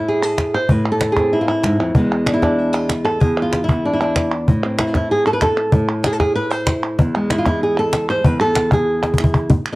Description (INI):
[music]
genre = flamenco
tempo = 191 BPM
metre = 4/4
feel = straight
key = E phrygian dominant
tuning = A4 = 436 Hz
[part]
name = flamenco guitar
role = melody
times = 0.0-9.8 s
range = E2 to C5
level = -17 LUFS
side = equal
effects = cassette tape
[part]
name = cajon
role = percussion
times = 0.2-9.8 s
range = none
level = -17 LUFS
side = equal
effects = none
[part]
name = palmas hand claps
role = percussion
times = 0.2-9.8 s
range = none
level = -24 LUFS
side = right 3 dB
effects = none
[sound]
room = moderate studio reverb, RT60 0.6 s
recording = home recording on cassette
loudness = -15 LUFS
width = side -20 dB against mid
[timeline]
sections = 0.0-9.5 A section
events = drum fill 9.0-9.5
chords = 0.0 Am; 2.0 E; 4.5 Am; 7.0 E